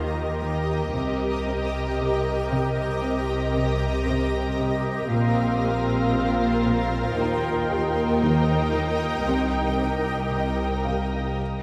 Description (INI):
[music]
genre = cinematic, suspense film score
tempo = 58 BPM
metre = 4/4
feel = straight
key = C minor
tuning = A4 = 442 Hz
[part]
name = muted symphonic violin section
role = melody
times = 0.0-11.4 s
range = Eb5 to G5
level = -34 LUFS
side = equal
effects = none
[part]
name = muted symphonic violin section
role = second line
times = 0.0-11.4 s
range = Bb4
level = -33 LUFS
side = equal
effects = none
[part]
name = muted symphonic viola section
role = accompaniment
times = 0.0-11.4 s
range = C4 to G4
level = -33 LUFS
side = equal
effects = none
[part]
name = shimmering ambient pad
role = sustained chords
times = 0.0-11.4 s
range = F4 to Bb5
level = -33 LUFS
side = equal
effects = chorus, built-in reverb, phaser
[part]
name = muted symphonic cello section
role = riff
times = 0.0-11.2 s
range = Bb2 to Eb4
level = -33 LUFS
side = equal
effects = none
[part]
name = muted symphonic cello section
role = bass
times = 0.0-11.4 s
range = C2 to Eb3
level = -31 LUFS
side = equal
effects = none
[part]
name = muted symphonic double bass section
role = bass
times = 0.0-11.4 s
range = Bb1 to Eb2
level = -32 LUFS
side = equal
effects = none
[part]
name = felt-muted upright piano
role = texture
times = 0.0-11.4 s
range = G4 to G5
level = -40 LUFS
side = equal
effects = none
[sound]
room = wet concert hall reverb, RT60 2.4 s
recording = recorded in a church or concert hall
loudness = -24 LUFS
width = mono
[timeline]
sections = 0.0-11.6 A section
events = none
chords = 0.0 Eb; 0.9 Cm7; 5.1 Bbsus2; 7.2 Eb; 9.3 Cm7